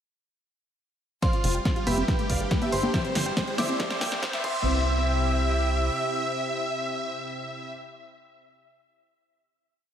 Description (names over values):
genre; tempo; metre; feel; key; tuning
uplifting trance; 140 BPM; 4/4; straight; C major; A4 = 441 Hz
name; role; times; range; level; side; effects
dense compressed supersaw; melody; 1.2-7.7 s; F4 to G5; -30 LUFS; equal; cassette tape, sidechain pumping, analog delay
glassy synth bell; second line; 1.2-7.7 s; B4 to D6; -34 LUFS; right 1 dB; chorus, tape echo
warm concert grand piano; second line; 1.2-7.7 s; F4 to G5; -38 LUFS; left 1 dB; wide subtle chorus, sidechain pumping, analog delay
lush unison pad; sustained chords; 1.2-7.7 s; C3 to B4; -34 LUFS; equal; chorus, phaser, sidechain pumping
tight sequenced synth; arpeggios; 1.2-4.8 s; A3 to G5; -35 LUFS; equal; chorus, sidechain pumping, analog delay
electronic kick drum; drums; 1.2-4.5 s; none; -28 LUFS; equal; studio reverb
punchy analog drum machine; drums; 1.2-4.5 s; congas, crash cymbal, hi-hat, snare drum; -30 LUFS; left 1 dB; overdrive, studio reverb
riser; sound effects; 2.4-4.7 s; none; -38 LUFS; right 2 dB; none
tight sequencer bass; bass; 1.4-5.9 s; F1 to C2; -27 LUFS; equal; sidechain pumping
room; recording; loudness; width
moderate plate reverb, RT60 2.4 s; dreamy mix soaked in reverb, high-pass filter; -24 LUFS; side -9 dB against mid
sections
1.2-4.7 build; 4.7-8.1 final hit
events
build-up 1.2-4.7; drum fill 1.2-4.7; filter sweep on synth arpeggio sound 1.2-4.7; filter sweep 1.2-4.7; riser 2.4-4.7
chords
1.2 Fsus2; 2.1 Gadd9; 2.9 C/G; 4.4 C